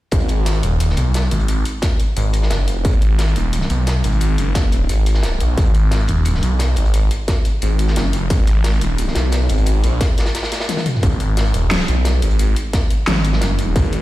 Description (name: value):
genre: dark technical drum and bass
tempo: 176 BPM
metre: 4/4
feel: straight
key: G# minor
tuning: A4 = 444 Hz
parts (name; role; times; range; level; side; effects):
- phased detuned saw bass; bass; 0.1-14.0 s; D#1 to B1; -16 LUFS; equal; phaser, overdrive, sidechain pumping
- crunchy breakbeat drum kit; drums; 0.1-14.0 s; hi-hat, snare drum; -27 LUFS; equal; high-pass filter on hats, small room ambience, high-pass filter on snare, high-pass filter on room
- dubstep drum kit; drums; 0.1-14.0 s; hi-hat, snare drum, toms; -24 LUFS; left 1 dB; small room ambience
- electronic kick drum; drums; 0.1-13.8 s; none; -17 LUFS; equal; distortion, small room ambience
room: studio ambience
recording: played on a big sound system in a bare room, stone room reverb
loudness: -15 LUFS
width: side -16 dB against mid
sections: 0.1-14.0 A section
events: drum fill 10.7-11.0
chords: none